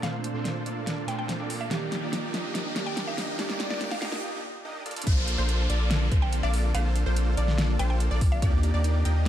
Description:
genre	future bass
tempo	143 BPM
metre	4/4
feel	half-time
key	Bb major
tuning	A4 = 439 Hz
part	mallet-like synth pluck	melody	0.0-8.5 s	D5 to G5	-37 LUFS	left 1 dB	chorus, sidechain pumping, dub echo
part	glassy digital keys	accompaniment	0.0-4.9 s	Bb2 to A4	-36 LUFS	right 3 dB	chorus, vintage 12-bit sampler grit, sidechain pumping, dub echo
part	ethereal airy pad	sustained chords	0.0-9.3 s	D3 to G5	-41 LUFS	right 2 dB	none
part	supersaw chords	riff	0.0-9.3 s	Bb3 to Eb5	-33 LUFS	right 1 dB	sidechain pumping, low-pass filter
part	pop drum kit	drums	0.0-9.3 s	crash cymbal, hi-hat, snare drum	-33 LUFS	equal	none
part	riser and downlifter	sound effects	0.8-8.4 s	none	-37 LUFS	equal	none
part	wide unison pluck	arpeggios	5.1-9.3 s	C5 to G5	-37 LUFS	right 1 dB	sidechain pumping, dub echo
part	saturated sub bass	bass	5.1-9.3 s	Bb1 to Eb2	-24 LUFS	equal	sidechain pumping
part	electronic kick drum	drums	5.1-8.5 s	none	-24 LUFS	equal	none
room	light reverb, digital ambience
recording	dark, warm production, high-pass filter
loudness	-24 LUFS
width	side -11 dB against mid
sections	0.0-5.1 A section; 5.1-9.3 B section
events	build-up 0.0-5.1; drum fill 0.0-4.2, 4.9; filter sweep on supersaw synth 0.0-5.1; filter sweep 0.0-5.1; riser 0.8-4.2; break 4.2-5.1; drop 5.1-9.3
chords	0.0 Bbmaj9; 1.7 Ebmaj7; 4.9 Bbmaj7; 5.1 Bbmaj9; 8.4 Ebmaj7

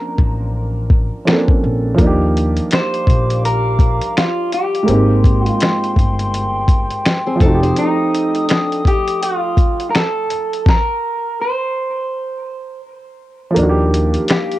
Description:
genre	lo-fi hip hop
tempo	83 BPM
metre	4/4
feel	swing 61% on 16ths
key	unclear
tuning	A4 = 440 Hz
part	electric guitar through a small old amp	melody	0.0-14.6 s	Eb4 to C5	-20 LUFS	right 1 dB	low-pass filter, cassette tape, tape echo, plate reverb
part	felt-muted upright piano	accompaniment	0.0-14.6 s	F3 to Bb4	-19 LUFS	right 2 dB	cassette tape, low-pass filter, plate reverb
part	upright bass	bass	0.2-7.7, 13.6-14.2 s	F1 to Eb2	-18 LUFS	equal	none
part	lo-fi sampler-style drum kit	drums	0.2-14.6 s	finger snaps, hi-hat, kick drum, snare drum	-14 LUFS	equal	vintage 12-bit sampler grit
part	dark analog pad	sustained chords	2.0-14.6 s	Ab3 to Eb6	-23 LUFS	left 1 dB	chorus, low-pass filter, cassette tape, plate reverb
part	nylon-string guitar	second line	7.3-8.7 s	C4 to C5	-24 LUFS	left 3 dB	low-pass filter, cassette tape, plate reverb
room	moderate booth ambience, RT60 0.2 s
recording	home recording on cassette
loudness	-13 LUFS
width	side -16 dB against mid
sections	0.0-13.6 A section; 13.6-14.6 B section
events	break 0.0-2.0, 7.8-13.6; stop 10.7-13.6; kick muted 13.6-14.6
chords	0.0 Bbmaj9; 2.0 Ebmaj9; 4.9 Abmaj7; 7.4 F9; 10.7 N.C.; 13.6 Ebmaj9

